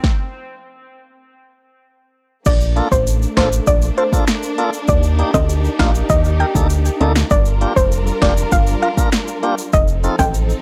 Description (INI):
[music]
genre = dancehall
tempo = 99 BPM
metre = 4/4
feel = straight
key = unclear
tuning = A4 = 440 Hz
[part]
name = deep house drum kit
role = drums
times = 0.0-10.5 s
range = crash cymbal, finger snaps, hi-hat, kick drum, snare drum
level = -20 LUFS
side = equal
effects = overdrive
[part]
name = soft round pluck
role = melody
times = 2.5-10.3 s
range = C5 to G5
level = -22 LUFS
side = equal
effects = chorus, analog delay
[part]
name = warm symphonic string section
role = sustained chords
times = 2.5-10.6 s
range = F3 to Bb4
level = -27 LUFS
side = equal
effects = sidechain pumping
[part]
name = round analog bass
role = bass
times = 2.5-10.5 s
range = F1 to Eb2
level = -20 LUFS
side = equal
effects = none
[part]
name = egg shaker and timbales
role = percussion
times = 2.5-10.6 s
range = none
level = -29 LUFS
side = equal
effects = none
[part]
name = tonewheel organ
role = accompaniment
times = 2.8-10.2 s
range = Bb3 to Bb4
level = -24 LUFS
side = equal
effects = overdrive
[sound]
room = digital ambience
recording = dry, gritty hardware recording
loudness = -16 LUFS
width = mono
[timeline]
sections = 0.0-2.5 A section; 2.5-10.6 B section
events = stop 0.0-2.5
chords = 0.0 N.C.; 2.5 Bbmaj7; 4.9 Ebmaj7; 7.3 Gm7; 9.7 F7